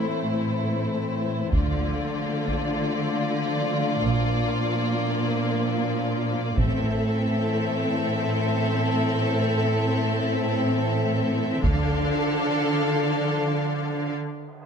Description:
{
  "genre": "cinematic, epic orchestral film score",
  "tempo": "free time",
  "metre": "none",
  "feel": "none",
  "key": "A phrygian",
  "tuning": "A4 = 440 Hz",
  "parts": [
    { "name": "warm symphonic violin section", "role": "melody", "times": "0.0-14.1 s", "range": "C5 to F5", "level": "-33 LUFS", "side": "left 5 dB", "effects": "none" },
    { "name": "warm symphonic violin section", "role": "second line", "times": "0.0-14.1 s", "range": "E4 to A4", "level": "-30 LUFS", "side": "equal", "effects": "none" },
    { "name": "rich symphonic viola section", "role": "accompaniment", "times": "0.0-14.1 s", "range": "A3 to D4", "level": "-30 LUFS", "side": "equal", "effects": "none" },
    { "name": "warm French horn section", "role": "sustained chords", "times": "0.0-14.1 s", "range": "E3 to D4", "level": "-30 LUFS", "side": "left 4 dB", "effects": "none" },
    { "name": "warm symphonic cello section", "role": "bass", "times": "0.0-14.1 s", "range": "A2 to D3", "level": "-27 LUFS", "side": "right 2 dB", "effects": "none" },
    { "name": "warm symphonic double bass section", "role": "bass", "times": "1.5-7.0, 11.6-12.0 s", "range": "A1 to D2", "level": "-28 LUFS", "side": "right 3 dB", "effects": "none" },
    { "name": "taiko ensemble", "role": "drums", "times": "1.5-2.7, 6.6-7.4, 11.6-12.4 s", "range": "none", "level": "-28 LUFS", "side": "equal", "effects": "none" },
    { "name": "cymbal swell", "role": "sound effects", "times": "14.3-14.7 s", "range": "none", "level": "-49 LUFS", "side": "right 3 dB", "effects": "none" }
  ],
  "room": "moderate scoring stage reverb, RT60 1.7 s",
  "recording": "none",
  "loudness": "-22 LUFS",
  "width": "side -6 dB against mid",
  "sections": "0.0-14.7 A section",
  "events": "build-up 0.0-14.7; break 14.2-14.7; cymbal swell 14.3-14.7",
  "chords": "0.0 Am; 1.5 Dm; 4.1 Bb; 6.6 Am; 11.6 Dm"
}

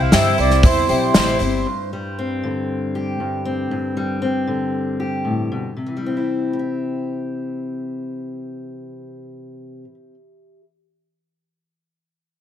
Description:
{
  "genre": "indie folk with a building arrangement",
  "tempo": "117 BPM",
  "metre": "4/4",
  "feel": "straight",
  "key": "C major",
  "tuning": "A4 = 439 Hz",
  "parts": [
    { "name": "mellow accordion", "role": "melody", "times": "0.0-1.4 s", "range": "C5 to F5", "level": "-21 LUFS", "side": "right 4 dB", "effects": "digital delay" },
    { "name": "warm cello", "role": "second line", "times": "0.0-1.4 s", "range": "E4", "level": "-27 LUFS", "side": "left 2 dB", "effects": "none" },
    { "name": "picked twelve-string acoustic guitar", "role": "accompaniment", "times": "0.0-1.7 s", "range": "C3 to C5", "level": "-22 LUFS", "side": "left 8 dB", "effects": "none" },
    { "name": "warm brass ensemble", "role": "sustained chords", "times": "0.0-1.6 s", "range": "C3 to G4", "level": "-31 LUFS", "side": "left 1 dB", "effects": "none" },
    { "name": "ukulele", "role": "arpeggios", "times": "0.0-1.7 s", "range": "E4 to C5", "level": "-26 LUFS", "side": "right 4 dB", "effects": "none" },
    { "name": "upright bass", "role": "bass", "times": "0.0-1.6 s", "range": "G1 to G2", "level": "-20 LUFS", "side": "equal", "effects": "none" },
    { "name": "unplugged drum kit", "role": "drums", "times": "0.1-1.5 s", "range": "hi-hat, kick drum, snare drum", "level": "-17 LUFS", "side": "equal", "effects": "none" },
    { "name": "fingerpicked steel-string acoustic guitar", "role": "accompaniment", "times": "1.7-10.7 s", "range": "G2 to E5", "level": "-23 LUFS", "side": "left 2 dB", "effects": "none" }
  ],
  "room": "light reverb",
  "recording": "none",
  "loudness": "-18 LUFS",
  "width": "side -10 dB against mid",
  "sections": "0.0-1.7 A section; 1.7-5.8 B section; 5.8-9.9 C section",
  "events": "none",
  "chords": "0.0 C; 1.7 Gsus4; 5.8 C"
}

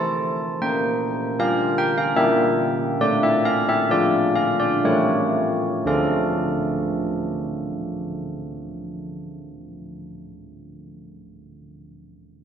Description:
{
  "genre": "classical, tune for church bells",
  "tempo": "58-79 BPM",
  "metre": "3/4",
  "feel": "straight",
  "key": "D minor",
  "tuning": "A4 = 440 Hz",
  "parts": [
    { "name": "carillon bells", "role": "solo", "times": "0.0-10.0 s", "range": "D3 to A5", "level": "-20 LUFS", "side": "equal", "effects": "none" }
  ],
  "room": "wet concert hall reverb, RT60 2.4 s",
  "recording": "heard from further back in the room, nothing above 10.7 kHz",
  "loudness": "-19 LUFS",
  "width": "side -8 dB against mid",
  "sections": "0.0-5.9 A section; 5.9-8.9 B section",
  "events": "slowing down 0.0-5.9",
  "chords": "0.0 Am/C; 0.6 Gm/Bb; 3.0 Dm/A; 4.8 A7; 5.9 Dm"
}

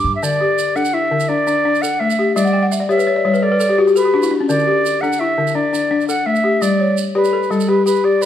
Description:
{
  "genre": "west african traditional, West African string and xylophone music",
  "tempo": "112 BPM (dotted quarters)",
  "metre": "12/8",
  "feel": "straight",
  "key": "D major",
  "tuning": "A4 = 441 Hz",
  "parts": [
    { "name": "concert flute", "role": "melody", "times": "0.0-8.3 s", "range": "A4 to D6", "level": "-18 LUFS", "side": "right 1 dB", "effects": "none" },
    { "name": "balafon", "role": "arpeggios", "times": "0.0-8.3 s", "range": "D3 to G5", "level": "-16 LUFS", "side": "left 3 dB", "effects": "none" },
    { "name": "tube shaker", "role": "percussion", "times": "0.2-8.3 s", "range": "none", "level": "-31 LUFS", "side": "right 8 dB", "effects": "none" }
  ],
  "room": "moderate recital hall reverb, RT60 1.6 s",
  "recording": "dark, warm production",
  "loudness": "-14 LUFS",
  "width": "side -10 dB against mid",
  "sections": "0.2-8.3 A section",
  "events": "balafon fill 2.4-4.5",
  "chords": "0.2 D5; 2.4 G; 4.5 D5; 6.6 G"
}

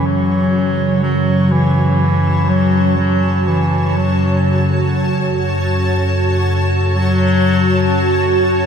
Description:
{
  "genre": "dark ambient drone",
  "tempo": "free time",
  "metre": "none",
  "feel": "none",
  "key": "F# minor",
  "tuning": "A4 = 440 Hz",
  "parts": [
    { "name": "clear bass clarinet", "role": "melody", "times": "0.0-8.4 s", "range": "E3 to F#3", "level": "-17 LUFS", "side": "left 1 dB", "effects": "ping-pong delay" },
    { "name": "granular cloud pad", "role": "sustained chords", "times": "0.0-8.7 s", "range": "F#4 to A5", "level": "-19 LUFS", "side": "right 1 dB", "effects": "built-in reverb" },
    { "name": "analog drone", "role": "drone", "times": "0.0-8.7 s", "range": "F#2 to C#3", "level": "-16 LUFS", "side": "equal", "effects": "chorus" }
  ],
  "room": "moderate huge ambient reverb, RT60 7.3 s",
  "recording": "dark, warm production",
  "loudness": "-13 LUFS",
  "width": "side -7 dB against mid",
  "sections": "0.0-8.7 A section",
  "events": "filter sweep on synth drone 0.0-8.7",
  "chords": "0.0 F#5"
}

